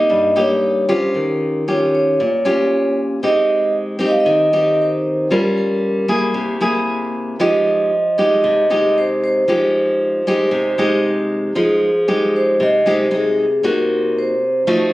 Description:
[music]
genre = bossa nova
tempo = 115 BPM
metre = 4/4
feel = straight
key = F minor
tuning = A4 = 440 Hz
[part]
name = vibraphone with medium mallets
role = melody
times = 0.0-14.9 s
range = Ab4 to F5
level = -16 LUFS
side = equal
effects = auto-pan
[part]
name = nylon-string guitar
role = accompaniment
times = 0.0-14.9 s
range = G2 to Bb4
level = -18 LUFS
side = equal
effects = none
[sound]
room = light reverb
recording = recorded on a phone in the room, studio reverb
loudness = -14 LUFS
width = side -17 dB against mid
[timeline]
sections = 0.0-11.5 A section; 11.5-14.9 B section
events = none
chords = 0.0 Cm7; 1.1 Eb9; 3.2 Abmaj7; 5.3 Gm7b5; 6.3 Caug7; 7.4 Fm9; 13.6 Cm7b5

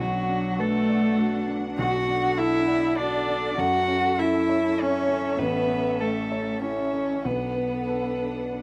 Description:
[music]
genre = neoclassical piano and strings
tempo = 99 BPM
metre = 3/4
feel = rubato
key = B minor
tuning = A4 = 441 Hz
[part]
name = muted violin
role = melody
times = 0.0-8.6 s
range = F#4 to F#5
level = -31 LUFS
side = equal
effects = slapback echo
[part]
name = muted cello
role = second line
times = 0.0-8.6 s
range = F#3 to F#4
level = -28 LUFS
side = equal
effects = none
[part]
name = warm concert grand piano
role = accompaniment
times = 0.0-8.6 s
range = A1 to D5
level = -32 LUFS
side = equal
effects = none
[part]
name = muted symphonic string section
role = sustained chords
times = 0.0-8.6 s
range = C#4 to F#5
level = -36 LUFS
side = equal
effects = none
[sound]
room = little or no reverb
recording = recorded outdoors, with no room sound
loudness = -25 LUFS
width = mono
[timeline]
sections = 0.0-8.6 A section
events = none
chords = 0.0 Bm7; 3.6 F#m7; 5.4 A; 7.2 Bm7

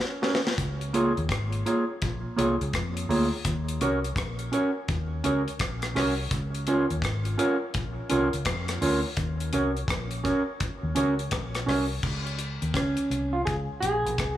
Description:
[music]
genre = roots reggae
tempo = 84 BPM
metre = 4/4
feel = swing 64% on 16ths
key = Db major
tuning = A4 = 442 Hz
[part]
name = deep reggae drum kit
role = drums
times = 0.0-14.4 s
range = crash cymbal, hi-hat, kick drum, rim click, snare drum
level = -31 LUFS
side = left 2 dB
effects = none
[part]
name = mellow electric guitar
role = accompaniment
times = 0.2-14.4 s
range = Bb3 to Db5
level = -27 LUFS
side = right 2 dB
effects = tape echo
[part]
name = vintage muted fingered electric bass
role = bass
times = 0.6-14.4 s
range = Ab1 to F2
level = -30 LUFS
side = left 1 dB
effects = none
[sound]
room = light reverb, small room ambience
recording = none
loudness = -25 LUFS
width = side -12 dB against mid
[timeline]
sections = 0.6-12.0 A section; 12.0-14.4 B section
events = drum fill 0.0-0.6; clean electric guitar solo 12.0-14.4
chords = 0.0 Ebm7 (rootless); 0.6 Db6; 3.4 Ebm7; 6.3 Db6; 9.2 Ebm7; 12.0 Db5

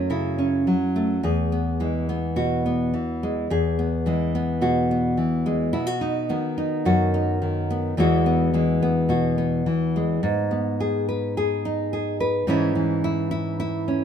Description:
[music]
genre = folk, solo fingerstyle acoustic guitar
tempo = 107 BPM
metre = 4/4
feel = straight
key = E major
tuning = A4 = 439 Hz
[part]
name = nylon-string guitar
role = solo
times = 0.0-14.0 s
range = E2 to B4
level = -21 LUFS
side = equal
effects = none
[sound]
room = light reverb, small room ambience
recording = rough home demo mix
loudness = -21 LUFS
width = side -8 dB against mid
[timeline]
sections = 0.0-10.2 A section; 10.2-14.0 B section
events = none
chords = 0.0 F#m7; 1.2 E; 5.7 B; 8.0 Eadd9; 10.2 G#m; 12.5 C#m/G#

